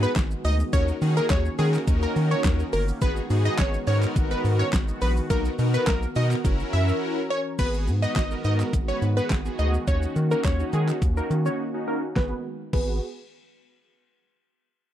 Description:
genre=dance-pop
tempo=105 BPM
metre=4/4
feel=straight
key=G# minor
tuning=A4 = 440 Hz
part: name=plucky unison lead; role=melody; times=0.0-13.0 s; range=G#4 to E5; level=-29 LUFS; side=equal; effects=sidechain pumping, low-pass filter, slapback echo
part: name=big bright polysynth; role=accompaniment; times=0.0-13.0 s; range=B3 to B4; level=-31 LUFS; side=equal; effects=chorus, sidechain pumping, low-pass filter
part: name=sweeping resonant pad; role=sustained chords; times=0.0-12.4 s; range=D#3 to A#4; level=-33 LUFS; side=equal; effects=chorus, sidechain pumping, low-pass filter
part: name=round analog bass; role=bass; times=0.0-13.0 s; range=F#1 to D#3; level=-24 LUFS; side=equal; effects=sidechain pumping
part: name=pop drum kit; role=drums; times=0.0-12.9 s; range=crash cymbal, handclaps, hi-hat, kick drum, shaker, snare drum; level=-26 LUFS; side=equal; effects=overdrive
room=little or no reverb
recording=dry, close 1970s-style studio recording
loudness=-22 LUFS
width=side -11 dB against mid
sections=0.0-7.6 A section; 7.6-12.2 B section; 12.2-14.4 C section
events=drop 0.0-7.6; break 7.0-7.6, 11.6-12.2; filter sweep 7.6-12.2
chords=0.0 G#m7; 0.7 D#m7; 3.0 G#m7; 5.3 Bmaj7; 6.4 F#7; 7.6 G#m7; 9.9 D#m7; 12.2 G#m7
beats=0.16 | 0.73 1.30 1.88 2.45 | 3.02 3.59 4.16 4.73 | 5.30 5.88 6.45 7.02 | 7.59 8.16 8.73 9.30 | 9.88 10.45 11.02 11.59 | 12.16 12.73

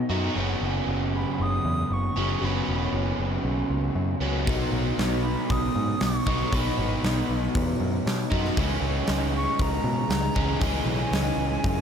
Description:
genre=rock, shoegaze and dream pop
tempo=117 BPM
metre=4/4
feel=straight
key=B major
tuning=A4 = 440 Hz
part: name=bright silver concert flute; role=melody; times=0.0-11.8 s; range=D#5 to D#6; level=-32 LUFS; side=equal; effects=analog delay
part: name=crunchy overdriven guitar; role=riff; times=0.0-11.8 s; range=F#2 to F#4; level=-26 LUFS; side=equal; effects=wide subtle chorus
part: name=picked electric bass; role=bass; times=0.1-11.8 s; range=E1 to B2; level=-28 LUFS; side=equal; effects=none
part: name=huge arena drum kit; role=drums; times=4.5-11.8 s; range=hi-hat, kick drum, snare drum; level=-28 LUFS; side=equal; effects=none
room=moderate plate reverb, RT60 1.9 s, small room ambience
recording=dreamy mix soaked in reverb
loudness=-23 LUFS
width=side -7 dB against mid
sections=0.0-11.8 A section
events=none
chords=0.4 F#sus4; 4.5 B; 8.6 C#m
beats=| 0.35 0.87 1.38 1.90 | 2.41 2.93 3.44 3.96 | 4.47 4.98 5.50 6.01 | 6.52 7.04 7.55 8.06 | 8.57 9.09 9.60 10.11 | 10.62 11.13 11.64

